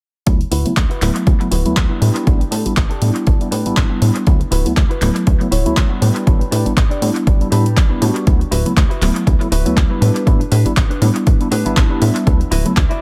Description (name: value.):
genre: filtered disco house.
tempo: 120 BPM.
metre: 4/4.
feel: swing 56% on 16ths.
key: unclear.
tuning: A4 = 440 Hz.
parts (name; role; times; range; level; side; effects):
tine electric piano; accompaniment; 0.3-12.7 s; F#3 to F#4; -23 LUFS; equal; phaser, vintage 12-bit sampler grit, sidechain pumping, low-pass filter, analog delay.
plucky analog bass; bass; 0.3-12.9 s; D1 to A2; -19 LUFS; equal; sidechain pumping, low-pass filter.
electronic kick drum; drums; 0.3-12.9 s; none; -16 LUFS; equal; overdrive, studio ambience.
punchy analog drum machine; drums; 0.3-13.0 s; handclaps, hi-hat; -26 LUFS; equal; overdrive, sidechain pumping on hats, studio ambience, analog delay.
clean electric guitar; riff; 0.5-13.0 s; D4 to A5; -28 LUFS; equal; subtle chorus, sidechain pumping, low-pass filter, analog delay.
room: digital ambience.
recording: echo-heavy mix.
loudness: -15 LUFS.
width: mono.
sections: 0.3-13.0 A section.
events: filter sweep 0.3-13.0; clean electric guitar fill 11.5-12.3.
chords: 0.3 D69; 2.0 A9sus4; 4.3 D69; 6.0 A9sus4; 8.3 D69; 10.0 A9sus4; 12.3 D69.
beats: | 0.27 0.77 1.27 1.77 | 2.27 2.77 3.27 3.77 | 4.27 4.77 5.27 5.77 | 6.27 6.77 7.27 7.77 | 8.27 8.77 9.27 9.77 | 10.27 10.77 11.27 11.77 | 12.27 12.77.